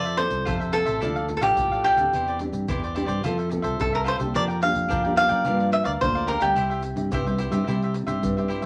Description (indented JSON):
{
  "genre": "samba and choro",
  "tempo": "108 BPM",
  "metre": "4/4",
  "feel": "straight",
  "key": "F major",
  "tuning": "A4 = 440 Hz",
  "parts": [
    { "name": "cavaquinho", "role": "melody", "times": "0.0-7.5 s", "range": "G4 to F5", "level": "-25 LUFS", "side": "equal", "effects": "none" },
    { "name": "cavaquinho", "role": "accompaniment", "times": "0.0-8.7 s", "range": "D4 to G5", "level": "-33 LUFS", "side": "equal", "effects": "none" },
    { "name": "nylon-string guitar", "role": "accompaniment", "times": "0.0-8.7 s", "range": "G2 to A4", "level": "-31 LUFS", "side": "equal", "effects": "none" },
    { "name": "fingered electric bass", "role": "bass", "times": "0.0-8.7 s", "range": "A1 to C3", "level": "-32 LUFS", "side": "equal", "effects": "none" },
    { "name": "tube shaker, pandeiro and surdo", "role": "percussion", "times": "0.1-8.7 s", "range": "none", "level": "-36 LUFS", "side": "equal", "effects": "none" }
  ],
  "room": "wet small room ambience, RT60 0.5 s",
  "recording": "vinyl crackle",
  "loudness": "-24 LUFS",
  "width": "mono",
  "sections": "0.0-8.7 A section",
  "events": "none",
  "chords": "0.0 Fmaj7; 1.0 Dmadd9; 2.1 Cadd9/E; 3.2 Fmaj7; 4.3 Bb6/F; 5.5 Gm7; 6.6 C"
}